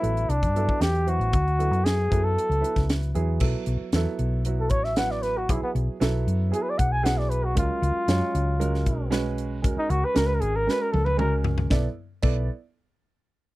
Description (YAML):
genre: electric jazz fusion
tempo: 116 BPM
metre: 4/4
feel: straight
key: B dorian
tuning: A4 = 440 Hz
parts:
  - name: trumpet with bucket mute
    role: melody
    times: 0.0-11.4 s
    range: B3 to G#5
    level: -26 LUFS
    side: equal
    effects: slapback echo
  - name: dark grand piano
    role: accompaniment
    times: 0.0-12.5 s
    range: F#3 to D5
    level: -31 LUFS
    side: right 5 dB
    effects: none
  - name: hollow-body short-scale fingered electric bass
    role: bass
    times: 0.0-12.5 s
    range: G#1 to G2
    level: -25 LUFS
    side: equal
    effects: none
  - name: crisp fusion drum kit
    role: drums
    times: 0.0-12.4 s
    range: crash cymbal, hi-hat, kick drum, snare drum, toms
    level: -26 LUFS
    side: equal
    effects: none
room: little or no reverb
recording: dry, close 1970s-style studio recording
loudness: -22 LUFS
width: side -18 dB against mid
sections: 0.0-3.4 A section; 3.4-11.7 B section; 11.7-13.6 C section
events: muted trumpet solo 3.4-11.7; drum fill 10.7-11.7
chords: 0.3 C69; 1.3 Dadd9; 2.1 F#m9; 3.4 B7sus4; 7.6 C#7sus4; 11.7 Bm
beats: 0.29 0.81 | 1.33 1.85 2.37 2.89 | 3.41 3.93 4.45 4.97 | 5.49 6.01 6.53 7.05 | 7.57 8.08 8.60 9.12 | 9.64 10.16 10.68 11.20 | 11.72 12.24